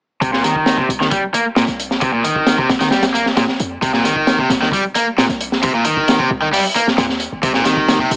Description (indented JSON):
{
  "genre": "breakbeat, breaks",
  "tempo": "133 BPM",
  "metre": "4/4",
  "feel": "straight",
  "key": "unclear",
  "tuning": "A4 = 438 Hz",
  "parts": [
    { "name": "cranked stack guitar", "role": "riff", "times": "0.2-8.1 s", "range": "Bb2 to Bb3", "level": "-16 LUFS", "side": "equal", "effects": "overdrive, tube saturation, low-pass filter, tape echo" },
    { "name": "warm 808-style bass", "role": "bass", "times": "0.2-8.2 s", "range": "G1 to F2", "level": "-29 LUFS", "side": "equal", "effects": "none" },
    { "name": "crunchy breakbeat drum kit", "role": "drums", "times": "0.2-8.2 s", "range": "hi-hat, kick drum, snare drum", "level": "-17 LUFS", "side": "equal", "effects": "none" },
    { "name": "dark analog pad", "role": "sustained chords", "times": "7.4-8.2 s", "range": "C4 to G4", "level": "-23 LUFS", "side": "right 1 dB", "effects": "wide subtle chorus, sidechain pumping" }
  ],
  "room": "light reverb",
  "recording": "small speaker sound",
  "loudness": "-13 LUFS",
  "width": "side -32 dB against mid",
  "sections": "0.2-8.2 A section",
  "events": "none",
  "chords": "0.2 Cm"
}